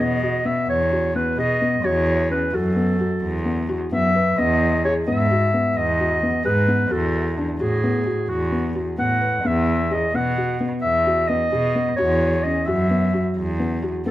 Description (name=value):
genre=contemporary instrumental, chamber music in an uneven meter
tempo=260 BPM (eighths)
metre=11/8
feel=straight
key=E major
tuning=A4 = 440 Hz
part: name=mellow clarinet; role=melody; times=0.0-14.1 s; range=F#4 to F#5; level=-22 LUFS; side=equal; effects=none
part: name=felt-muted upright piano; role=arpeggios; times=0.0-14.1 s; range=B3 to B4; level=-25 LUFS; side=left 2 dB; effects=none
part: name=warm cello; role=bass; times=0.0-14.1 s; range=E2 to B2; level=-23 LUFS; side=right 1 dB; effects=none
room=light reverb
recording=close, detailed microphones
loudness=-18 LUFS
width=side -14 dB against mid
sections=0.0-14.1 A section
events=none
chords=0.0 Emaj7sus2; 1.8 B7sus4/E; 4.4 Emaj9; 6.9 D6/E (rootless); 9.4 Emaj9; 12.0 Bsus24/E